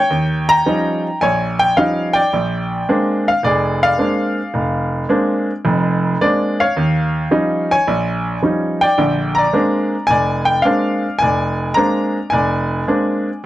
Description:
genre	solo jazz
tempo	108 BPM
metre	4/4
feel	swing 69% on 8ths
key	Bb mixolydian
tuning	A4 = 441 Hz
part	clear baby grand piano	solo	0.0-13.4 s	F1 to Bb5	-14 LUFS	equal	none
room	moderate small room reverb, RT60 0.5 s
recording	none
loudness	-14 LUFS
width	side -15 dB against mid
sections	0.0-13.5 A section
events	none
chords	0.1 Eb9; 2.3 Bb9; 6.8 Eb9; 9.0 Bb9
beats	| 0.11 0.66 1.22 1.77 | 2.33 2.88 3.43 3.99 | 4.54 5.10 5.65 6.21 | 6.76 7.32 7.88 8.43 | 8.99 9.54 10.10 10.65 | 11.21 11.76 12.32 12.88

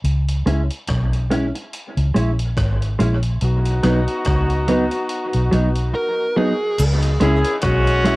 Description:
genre	dub reggae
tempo	71 BPM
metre	4/4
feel	swing 56% on 16ths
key	C# dorian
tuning	A4 = 440 Hz
part	vintage muted fingered electric bass	bass	0.0-8.2 s	G#1 to C#2	-18 LUFS	equal	none
part	breakbeat sampler-style drum kit	drums	0.0-8.2 s	crash cymbal, hi-hat, kick drum, rim click	-28 LUFS	equal	cassette tape
part	clean electric guitar	accompaniment	0.5-8.2 s	F#3 to E4	-21 LUFS	right 1 dB	analog chorus, low-pass filter, dub echo
part	clear horn section	second line	3.4-8.2 s	G#3 to G#4	-22 LUFS	left 1 dB	dub echo
part	fuzz lead guitar	melody	5.9-6.8 s	G#4 to A#4	-23 LUFS	right 1 dB	distortion, cassette tape, dub echo
part	cabasa	percussion	6.8-7.0 s	none	-39 LUFS	right 3 dB	none
room	light reverb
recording	home recording on cassette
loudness	-16 LUFS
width	side -21 dB against mid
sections	0.0-6.8 A section; 6.8-8.2 B section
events	break 0.0-3.4; part muted 6.8-8.2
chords	0.0 C#m; 3.4 B; 6.8 C#m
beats	| 0.04 0.89 1.73 2.57 | 3.42 4.26 5.10 5.95 | 6.79 7.63

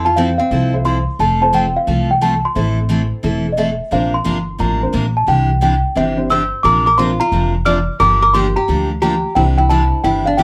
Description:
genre	country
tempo	176 BPM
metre	4/4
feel	swing 65% on 8ths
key	F major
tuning	A4 = 435 Hz
part	small celesta	melody	0.0-10.4 s	Eb5 to F6	-19 LUFS	equal	none
part	archtop guitar, miked and amplified	second line	0.0-1.0, 6.0-10.4 s	C4 to D5	-23 LUFS	equal	none
part	picked steel-string acoustic guitar	accompaniment	0.0-10.4 s	C3 to Bb4	-23 LUFS	equal	none
part	upright bass	bass	0.0-10.4 s	E1 to F2	-21 LUFS	equal	none
part	warm upright piano	accompaniment	0.7-10.3 s	A3 to C5	-28 LUFS	equal	none
room	light reverb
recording	none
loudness	-15 LUFS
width	mono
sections	0.0-1.2 A section; 1.2-10.4 A section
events	none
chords	0.0 Fmaj7; 1.2 F; 2.6 Am; 3.9 Bbadd9; 5.3 Cadd9; 6.6 Bbadd9; 8.0 Gm7; 9.4 Cadd9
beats	0.17 0.51 0.85 | 1.19 1.53 1.87 2.21 | 2.55 2.89 3.23 3.57 | 3.91 4.25 4.59 4.93 | 5.28 5.62 5.96 6.30 | 6.64 6.98 7.32 7.66 | 8.00 8.34 8.68 9.02 | 9.36 9.70 10.04 10.38

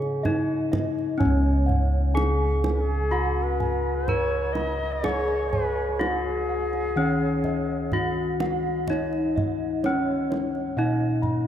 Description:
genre	Javanese gamelan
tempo	62 BPM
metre	4/4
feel	straight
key	Db slendro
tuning	A4 = 440 Hz
part	gamelan-type bronze metallophone	melody	0.0-11.5 s	Db4 to Cb5-45c	-26 LUFS	left 2 dB	none
part	gamelan-type bossed gongs	arpeggios	0.0-11.5 s	Db5 to Cb6-45c	-35 LUFS	equal	none
part	gamelan-type bronze metallophone	arpeggios	0.0-11.5 s	Db5 to Cb6-45c	-34 LUFS	right 6 dB	none
part	gamelan-type bossed gongs	bass	0.0-11.5 s	Db2 to Ab4+25c	-27 LUFS	equal	none
part	kendang	percussion	0.0-11.4 s	none	-32 LUFS	right 2 dB	none
part	bright reedy bansuri	second line	2.7-8.1 s	Ab4+25c to Eb5+25c	-31 LUFS	left 2 dB	none
room	moderate cathedral reverb, RT60 5.3 s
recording	in a vast, echoing space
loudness	-22 LUFS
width	side -10 dB against mid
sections	0.0-1.2 A section; 1.2-11.5 B section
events	none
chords	none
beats	0.24 | 1.19 2.16 3.12 4.08 | 5.04 6.01 6.97 7.93 | 8.89 9.85 10.77

